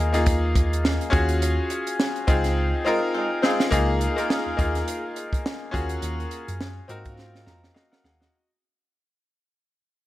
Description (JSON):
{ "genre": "lush 1970s-style soul", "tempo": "104 BPM", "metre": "4/4", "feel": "swing 58% on 16ths", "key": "Db major", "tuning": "A4 = 439 Hz", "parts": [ { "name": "bright concert grand piano", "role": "accompaniment", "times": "0.0-8.5 s", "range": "Bb3 to Bb5", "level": "-25 LUFS", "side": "left 2 dB", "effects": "none" }, { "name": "mellow tine electric piano", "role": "bass", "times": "0.0-8.3 s", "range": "Db2 to Ab2", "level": "-26 LUFS", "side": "equal", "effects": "fast stereo tremolo" }, { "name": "compact cocktail drum kit", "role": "drums", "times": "0.1-8.3 s", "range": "hi-hat, kick drum, snare drum", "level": "-25 LUFS", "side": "right 1 dB", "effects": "none" }, { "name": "mellow horn section", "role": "stabs", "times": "2.9-8.0 s", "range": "Ab3 to Bb4", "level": "-31 LUFS", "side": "right 1 dB", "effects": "none" } ], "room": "small room ambience", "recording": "none", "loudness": "-21 LUFS", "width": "side -15 dB against mid", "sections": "0.0-3.7 A section; 3.7-8.3 B section", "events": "band accent 1.4-3.7; drum fill 2.6-3.7, 7.2-8.3; fade-out 3.7-8.3; grand piano fill 7.2-8.3", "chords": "0.0 Db69 (rootless); 1.1 Ebm11; 2.3 Dbmaj9; 3.7 Db69; 5.7 Ebm11; 6.9 Ab9", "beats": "0.27 0.84 | 1.42 1.99 2.57 3.14 | 3.72 4.29 4.87 5.45 | 6.02 6.60 7.18 7.75" }